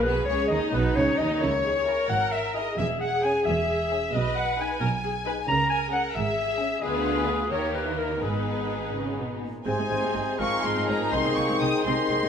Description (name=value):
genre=classical, dramatic, fast romantic movement for symphony orchestra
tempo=81-90 BPM (dotted quarters)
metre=6/8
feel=rubato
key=G# minor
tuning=A4 = 440 Hz
part: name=warm symphonic violin section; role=melody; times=0.0-12.3 s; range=Ab4 to Eb6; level=-31 LUFS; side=left 3 dB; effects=none
part: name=rich symphonic violin section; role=second line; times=0.0-12.3 s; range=A#3 to G#4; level=-32 LUFS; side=left 3 dB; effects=none
part: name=warm clarinet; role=second line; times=0.0-12.3 s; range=G4 to A#5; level=-28 LUFS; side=left 2 dB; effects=none
part: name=clear symphonic viola section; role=accompaniment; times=0.0-12.3 s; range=Ab3 to B4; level=-31 LUFS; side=right 1 dB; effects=none
part: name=rich symphonic double bass section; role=bass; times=0.0-12.1 s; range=E1 to D#2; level=-33 LUFS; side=right 3 dB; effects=none
part: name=warm symphonic cello section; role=bass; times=0.0-12.3 s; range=E2 to D#3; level=-32 LUFS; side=right 3 dB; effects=none
part: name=timpani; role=percussion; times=8.2-8.9 s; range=G#2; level=-44 LUFS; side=left 3 dB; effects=none
part: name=concert flute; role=second line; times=9.7-12.3 s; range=C5 to G5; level=-35 LUFS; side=left 2 dB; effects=none
part: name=warm oboe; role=second line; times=9.7-12.3 s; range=Bb4 to C5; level=-33 LUFS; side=right 3 dB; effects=none
part: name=warm bassoon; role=accompaniment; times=9.7-12.3 s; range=C3 to F3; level=-32 LUFS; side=right 1 dB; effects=none
part: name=warm French horn section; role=sustained chords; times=9.7-12.3 s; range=Ab3 to Eb4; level=-31 LUFS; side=left 4 dB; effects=none
room=wet recital hall reverb, RT60 1.5 s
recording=minimal, uncompressed stereo recording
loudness=-23 LUFS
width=side -7 dB against mid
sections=0.0-9.7 A section; 9.7-12.3 B section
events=none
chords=0.0 G#m/B; 1.4 C#m; 2.8 C#m/E; 4.1 G#m/B; 5.5 C#m; 6.8 Ddim7; 7.5 D#; 8.2 G#m; 9.7 Ab; 11.1 Ab/C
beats=| 0.05 0.73 | 1.42 2.10 | 2.78 3.46 | 4.14 4.81 | 5.48 6.15 | 6.83 7.52 | 8.23 8.94 | 9.66 10.39 | 11.12 11.86